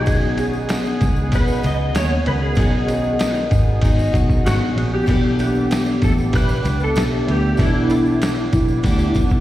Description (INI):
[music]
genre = indie pop, bedroom pop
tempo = 96 BPM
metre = 4/4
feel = straight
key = unclear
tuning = A4 = 437 Hz
[part]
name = clean lap steel guitar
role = melody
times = 0.0-9.4 s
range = E4 to D#5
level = -24 LUFS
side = equal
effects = ensemble chorus, slapback echo, ping-pong delay
[part]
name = picked steel-string acoustic guitar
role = accompaniment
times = 0.0-9.4 s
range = B2 to G4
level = -24 LUFS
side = left 3 dB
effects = lush chorus, warbly pitch drift, slapback echo
[part]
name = warbly lo-fi synth keys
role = accompaniment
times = 0.0-9.4 s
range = A#3 to F#5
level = -29 LUFS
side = right 3 dB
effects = chorus, slapback echo
[part]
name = warbly tape-like pad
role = sustained chords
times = 0.0-9.4 s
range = B3 to D#6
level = -26 LUFS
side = equal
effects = chorus, built-in reverb
[part]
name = vintage muted picked electric bass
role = bass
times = 0.0-9.4 s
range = G#1 to D#2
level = -20 LUFS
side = equal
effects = none
[part]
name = lo-fi sampler-style drum kit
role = drums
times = 0.1-9.4 s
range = kick drum, ride cymbal, snare drum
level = -21 LUFS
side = equal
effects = none
[part]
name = tambourine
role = percussion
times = 0.1-9.4 s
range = none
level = -42 LUFS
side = right 4 dB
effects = none
[sound]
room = little or no reverb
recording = live gig heard through the venue's PA, recital hall reverb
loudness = -16 LUFS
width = side -14 dB against mid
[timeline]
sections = 0.0-9.4 A section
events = none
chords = 0.0 B6; 5.1 G6